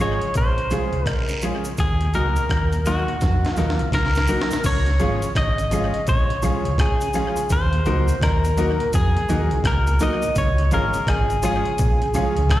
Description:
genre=roots reggae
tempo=84 BPM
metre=4/4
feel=swing 63% on 16ths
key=Db major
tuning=A4 = 439 Hz
part: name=electric guitar at the edge of break-up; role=melody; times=0.0-12.6 s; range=Gb4 to Eb5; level=-24 LUFS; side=equal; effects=tape echo, slapback echo
part: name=mellow electric guitar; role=accompaniment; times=0.0-12.4 s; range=F3 to Gb4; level=-29 LUFS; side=right 2 dB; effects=analog chorus, tape echo, slapback echo
part: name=mellow tonewheel organ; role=accompaniment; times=0.0-12.3 s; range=Eb2 to Gb4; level=-32 LUFS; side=left 1 dB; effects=overdrive, chorus vibrato, slow rotary speaker, tape echo
part: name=bright grand piano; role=stabs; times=0.0-12.4 s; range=Db4 to Bb4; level=-31 LUFS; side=left 4 dB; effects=slapback echo
part: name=hollow-body short-scale fingered electric bass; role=bass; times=0.0-12.5 s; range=Ab1 to F2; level=-21 LUFS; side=equal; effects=none
part: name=breakbeat sampler-style drum kit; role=drums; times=0.2-12.6 s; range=crash cymbal, hi-hat, kick drum, rim click, snare drum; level=-24 LUFS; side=equal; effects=tape echo
part: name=cabasa and guiro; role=percussion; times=0.4-12.4 s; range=none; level=-37 LUFS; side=right 2 dB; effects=none
room=light reverb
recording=live gig heard through the venue's PA, recital hall reverb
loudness=-18 LUFS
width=side -14 dB against mid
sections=0.0-4.6 A section; 4.6-12.6 B section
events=drum fill 3.2-4.6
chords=0.0 Db; 1.8 Ebm; 4.6 Db; 7.5 Ebm; 10.4 Db

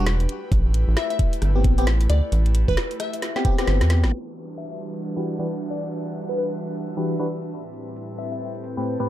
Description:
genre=UK garage, two-step garage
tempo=133 BPM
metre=4/4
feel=swing 60% on 16ths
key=E minor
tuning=A4 = 441 Hz
part: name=airy breathy pad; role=sustained chords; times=0.0-9.1 s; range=A2 to B4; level=-33 LUFS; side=equal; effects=chorus, sidechain pumping
part: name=FM electric piano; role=stabs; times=0.0-9.1 s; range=A2 to B4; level=-26 LUFS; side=left 2 dB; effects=chorus, phaser, low-pass filter, ping-pong delay
part: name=rubbery square bass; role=bass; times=0.0-4.1 s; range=E1 to E2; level=-19 LUFS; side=equal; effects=none
part: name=garage drum kit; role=drums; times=0.1-9.1 s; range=hi-hat, rim click, snare drum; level=-29 LUFS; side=equal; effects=none
part: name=electronic kick drum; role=drums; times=0.5-3.6 s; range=none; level=-21 LUFS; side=equal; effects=none
part: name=glassy wavetable pluck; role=melody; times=1.0-8.4 s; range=B4 to E5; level=-29 LUFS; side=left 3 dB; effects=chorus, ping-pong delay
part: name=downlifter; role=sound effects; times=4.2-7.7 s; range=none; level=-45 LUFS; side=right 1 dB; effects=none
part: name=rich chamber string section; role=texture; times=4.1-9.1 s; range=G3 to G5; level=-34 LUFS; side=right 2 dB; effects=sidechain pumping
room=little or no reverb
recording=low-pass filter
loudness=-20 LUFS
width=side -13 dB against mid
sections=0.0-4.1 A section; 4.1-9.1 B section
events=drum fill 3.2-4.1; band accent 4.0; filter sweep 4.1-9.1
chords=0.3 Am7; 4.1 Em9; 7.5 Am7

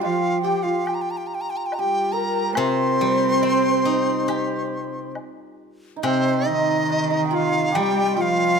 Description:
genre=chinese traditional, Chinese chamber ensemble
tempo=70 BPM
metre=4/4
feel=straight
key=C yu mode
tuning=A4 = 441 Hz
part: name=large dizi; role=melody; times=0.0-8.6 s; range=C5 to C6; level=-25 LUFS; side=left 1 dB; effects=none
part: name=bright reedy low xiao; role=second line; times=0.0-8.6 s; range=C4 to C5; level=-26 LUFS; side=left 8 dB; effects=none
part: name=dark cello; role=second line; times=0.0-8.6 s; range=C3 to C4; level=-26 LUFS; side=right 9 dB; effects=none
part: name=hammered dulcimer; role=second line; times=0.0-8.6 s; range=C4 to C5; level=-25 LUFS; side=right 4 dB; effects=none
part: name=woodblock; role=percussion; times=0.0-8.0 s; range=none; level=-33 LUFS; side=left 3 dB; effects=none
part: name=steel-string zither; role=accompaniment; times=2.6-8.6 s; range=C3 to G4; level=-28 LUFS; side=left 4 dB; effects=none
room=light reverb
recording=close, detailed microphones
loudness=-19 LUFS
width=side -6 dB against mid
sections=0.0-6.0 A section; 6.0-8.6 B section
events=none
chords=none

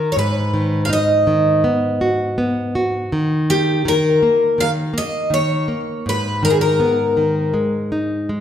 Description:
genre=fado-style ballad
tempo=81 BPM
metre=4/4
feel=rubato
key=unclear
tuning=A4 = 440 Hz
part: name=picked twelve-string acoustic guitar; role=melody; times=0.0-7.9 s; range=G4 to F5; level=-18 LUFS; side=left 1 dB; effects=none
part: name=nylon-string guitar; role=accompaniment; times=0.0-8.4 s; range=Ab2 to Gb4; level=-19 LUFS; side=equal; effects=none
room=wet recital hall reverb, RT60 1.4 s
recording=none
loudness=-15 LUFS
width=side -9 dB against mid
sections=0.0-8.4 A section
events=none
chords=0.2 Abm7; 3.1 Eb5; 6.1 Abmadd9

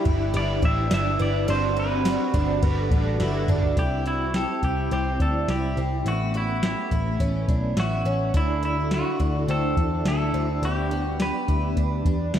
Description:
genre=dream pop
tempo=105 BPM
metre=4/4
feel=straight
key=G major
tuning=A4 = 440 Hz
part: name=semi-hollow electric guitar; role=melody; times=0.0-12.3 s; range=E4 to E5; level=-29 LUFS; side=right 1 dB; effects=analog delay
part: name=raw garage guitar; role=accompaniment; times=0.0-3.8 s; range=G3 to B4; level=-33 LUFS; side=right 3 dB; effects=overdrive, harmonic tremolo, ensemble chorus
part: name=ensemble organ-string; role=sustained chords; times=0.0-12.4 s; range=D3 to B4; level=-29 LUFS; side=equal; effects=ensemble chorus
part: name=picked twelve-string acoustic guitar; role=arpeggios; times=0.0-12.4 s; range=B3 to G4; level=-31 LUFS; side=equal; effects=lush chorus, analog delay
part: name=vintage muted picked electric bass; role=bass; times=0.1-12.4 s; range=G1 to E2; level=-26 LUFS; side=equal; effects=none
part: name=soft vintage rhythm box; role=drums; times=0.1-12.4 s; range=hi-hat, kick drum, ride cymbal, snare drum, tambourine, toms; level=-26 LUFS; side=equal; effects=overdrive
room=moderate lush hall reverb, RT60 2.4 s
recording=dreamy mix soaked in reverb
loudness=-21 LUFS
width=side -10 dB against mid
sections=0.0-3.8 A section; 3.8-12.4 B section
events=drum fill 3.2-3.8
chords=0.0 Em7/G; 1.5 D13/G; 2.6 Gmaj7; 3.8 C; 6.1 Aadd9; 8.3 Dadd9; 10.6 G/D

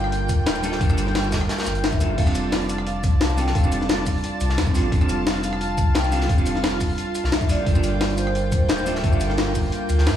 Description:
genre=liquid drum and bass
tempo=175 BPM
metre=4/4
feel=straight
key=G minor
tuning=A4 = 440 Hz
part: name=vibraphone with medium mallets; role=melody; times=0.0-10.2 s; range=C5 to A5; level=-31 LUFS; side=equal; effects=diffuse ambient delay
part: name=hollow-body jazz guitar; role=accompaniment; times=0.0-10.2 s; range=G3 to A4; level=-27 LUFS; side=right 1 dB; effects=analog delay
part: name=lush unison pad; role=sustained chords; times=0.0-10.2 s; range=Bb3 to A5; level=-29 LUFS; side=right 1 dB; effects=chorus, sidechain pumping
part: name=warm sub bass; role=bass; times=0.0-10.2 s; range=D1 to G2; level=-24 LUFS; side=equal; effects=tube saturation
part: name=jungle sampler-style drum kit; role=drums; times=0.0-10.1 s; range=crash cymbal, hi-hat, rim click, shaker, snare drum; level=-27 LUFS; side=left 2 dB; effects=studio reverb
part: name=crunchy breakbeat drum kit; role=drums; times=0.1-10.2 s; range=hi-hat, snare drum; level=-32 LUFS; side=left 1 dB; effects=high-pass filter on hats, studio reverb, high-pass filter on snare, high-pass filter on room
part: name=electronic kick drum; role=drums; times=0.3-9.6 s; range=none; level=-21 LUFS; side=left 1 dB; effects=studio reverb
room=light reverb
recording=small room reverb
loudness=-19 LUFS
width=side -10 dB against mid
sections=0.0-10.2 A section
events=none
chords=0.0 Gm7; 2.2 F6; 7.5 Gm7

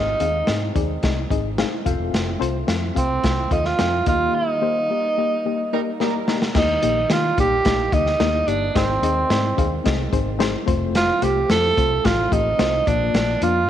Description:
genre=uptempo 1960s-style soul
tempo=109 BPM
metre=4/4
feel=straight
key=Eb major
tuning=A4 = 440 Hz
part: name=breathy tenor saxophone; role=melody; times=0.0-13.7 s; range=C4 to A4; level=-21 LUFS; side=right 3 dB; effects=none
part: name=reed electric piano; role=accompaniment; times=0.0-13.7 s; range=Ab2 to G5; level=-25 LUFS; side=left 10 dB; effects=tremolo
part: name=percussive tonewheel organ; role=sustained chords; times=0.0-13.7 s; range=Eb3 to F4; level=-34 LUFS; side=equal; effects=none
part: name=vintage muted fingered electric bass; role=bass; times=0.0-13.7 s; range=Fb1 to Eb3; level=-25 LUFS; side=equal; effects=none
part: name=crunchy breakbeat drum kit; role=drums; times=0.2-13.5 s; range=crash cymbal, hi-hat, kick drum, snare drum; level=-23 LUFS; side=equal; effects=none
part: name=warm horn section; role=second line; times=5.7-6.4 s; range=G3 to Bb4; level=-28 LUFS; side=right 8 dB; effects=none
room=moderate echo chamber reverb, RT60 2.7 s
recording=1960s-style stereo with parts hard left and right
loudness=-18 LUFS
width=side -10 dB against mid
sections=0.0-6.6 A section; 6.6-13.7 A section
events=band accent 4.4-6.6; drum fill 6.0-6.6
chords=0.0 Ab; 1.9 F; 4.1 Eb; 8.8 Ab; 10.7 F; 12.9 Bb

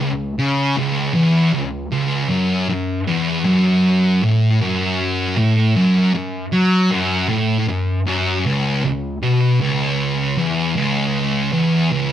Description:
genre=metal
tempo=78 BPM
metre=4/4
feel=straight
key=C# minor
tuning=A4 = 440 Hz
part: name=thick fuzz guitar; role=solo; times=0.0-12.1 s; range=C#2 to F#3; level=-16 LUFS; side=equal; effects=distortion
room=moderate studio reverb, RT60 0.8 s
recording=band playing live in one room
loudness=-16 LUFS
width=side -10 dB against mid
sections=0.0-12.1 A section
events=none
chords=none

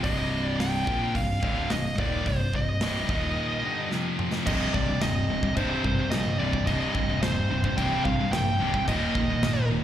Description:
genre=heavy metal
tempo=109 BPM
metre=4/4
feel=straight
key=C minor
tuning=A4 = 439 Hz
part: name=high-gain lead guitar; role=melody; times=0.0-9.7 s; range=C5 to G5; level=-30 LUFS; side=right 1 dB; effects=distortion, slapback echo, ping-pong delay
part: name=high-gain distorted guitar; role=riff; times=0.0-9.8 s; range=C2 to Bb3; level=-29 LUFS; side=left 4 dB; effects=distortion
part: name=scooped high-gain guitar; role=riff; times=0.0-9.8 s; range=C2 to Bb3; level=-33 LUFS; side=right 10 dB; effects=distortion, slapback echo
part: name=modern bright fingered electric bass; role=bass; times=0.0-9.8 s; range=C1 to C2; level=-32 LUFS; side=right 1 dB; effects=none
part: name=modern studio drum kit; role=drums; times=0.0-9.6 s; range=crash cymbal, hi-hat, kick drum, snare drum, toms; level=-31 LUFS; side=equal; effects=none
part: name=distorted electric guitar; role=riff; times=4.5-9.8 s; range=C2 to Eb3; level=-32 LUFS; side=right 2 dB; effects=distortion, slapback echo
room=small room ambience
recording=live gig heard through the venue's PA, recital hall reverb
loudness=-24 LUFS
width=side -11 dB against mid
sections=0.0-4.5 A section; 4.5-9.8 B section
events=drum fill 3.9-4.5; lead electric guitar solo 4.5-9.8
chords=0.0 Cm; 3.1 Eb5; 3.6 Ebmaj7/G; 3.9 F5; 4.5 Cm

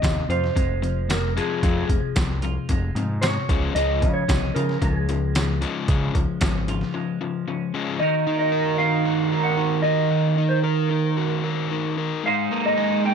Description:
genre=indie rock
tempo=113 BPM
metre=4/4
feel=straight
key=unclear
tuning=A4 = 440 Hz
part: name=mellow electric guitar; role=melody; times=0.0-13.1 s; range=Ab4 to G5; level=-26 LUFS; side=right 1 dB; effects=analog delay
part: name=overdriven electric guitar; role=riff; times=0.0-13.1 s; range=F2 to Bb4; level=-27 LUFS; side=left 7 dB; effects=none
part: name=overdriven semi-hollow guitar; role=riff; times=0.0-13.1 s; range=F2 to C5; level=-26 LUFS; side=right 6 dB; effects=lush chorus
part: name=growling picked electric bass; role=bass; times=0.0-6.8 s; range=F1 to Db3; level=-25 LUFS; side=equal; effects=overdrive
part: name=trip hop sampler-style drum kit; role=drums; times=0.0-6.9 s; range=hi-hat, kick drum, snare drum, tambourine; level=-24 LUFS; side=equal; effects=overdrive
room=light reverb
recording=dark, warm production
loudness=-20 LUFS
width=side -7 dB against mid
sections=0.0-8.0 A section; 8.0-13.1 B section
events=break 6.9-8.0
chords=0.0 Fm; 3.5 Db; 8.0 Ebm; 12.2 Abadd9

